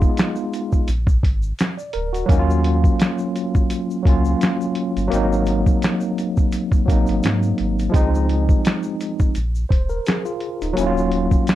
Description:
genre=lo-fi hip hop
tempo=85 BPM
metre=4/4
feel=swing 56% on 16ths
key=unclear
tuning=A4 = 438 Hz
part: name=barky tine electric piano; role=accompaniment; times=0.0-11.6 s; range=F3 to D5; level=-21 LUFS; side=equal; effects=overdrive, fast stereo tremolo, cassette tape
part: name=sub bass with octave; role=bass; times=0.0-11.4 s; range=D1 to Ab2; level=-21 LUFS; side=equal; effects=none
part: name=lo-fi sampler-style drum kit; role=drums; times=0.0-11.6 s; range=finger snaps, hi-hat, kick drum, snare drum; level=-18 LUFS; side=equal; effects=overdrive
part: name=egg shaker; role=percussion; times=0.0-11.6 s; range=none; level=-46 LUFS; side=left 5 dB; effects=none
room=little or no reverb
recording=dark, warm production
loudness=-17 LUFS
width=side -14 dB against mid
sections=0.0-11.6 A section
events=none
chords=0.0 Fm7b5; 0.9 Bb7; 2.3 Ebm7; 5.1 Ab7; 7.9 Dbmaj9; 9.3 Bbsus4; 10.8 Ebm7

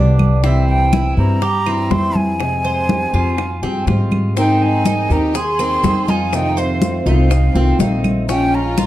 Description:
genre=latin, Cuban son and guajira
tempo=122 BPM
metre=4/4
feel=straight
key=F minor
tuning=A4 = 440 Hz
part: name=breathy jazz flute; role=melody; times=0.0-8.9 s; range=D5 to C6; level=-21 LUFS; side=right 1 dB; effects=none
part: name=fingerpicked acoustic archtop guitar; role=accompaniment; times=0.0-8.9 s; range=C3 to Bb4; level=-22 LUFS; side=left 2 dB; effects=none
part: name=Cuban tres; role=arpeggios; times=0.0-8.9 s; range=C4 to C5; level=-24 LUFS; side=right 3 dB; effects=none
part: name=upright bass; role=bass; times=0.0-8.9 s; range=Bb1 to Ab2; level=-17 LUFS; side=equal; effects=none
part: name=bongos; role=percussion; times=0.2-8.9 s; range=none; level=-26 LUFS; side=left 8 dB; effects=none
part: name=claves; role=percussion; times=0.2-8.9 s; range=none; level=-32 LUFS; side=right 8 dB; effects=none
part: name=congas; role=percussion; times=0.2-8.9 s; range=none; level=-20 LUFS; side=equal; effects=none
part: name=warm chamber violin section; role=second line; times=4.4-8.9 s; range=C4 to Ab4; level=-23 LUFS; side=equal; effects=none
part: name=maracas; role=percussion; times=4.4-8.9 s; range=none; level=-34 LUFS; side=left 5 dB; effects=none
room=moderate large studio reverb, RT60 0.8 s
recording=dark, warm production, lossy compression artefacts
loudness=-14 LUFS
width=side -14 dB against mid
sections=0.0-8.9 A section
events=none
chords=0.4 C; 2.4 Fmadd9; 4.4 Abadd9; 6.3 F7; 8.3 Bbm7

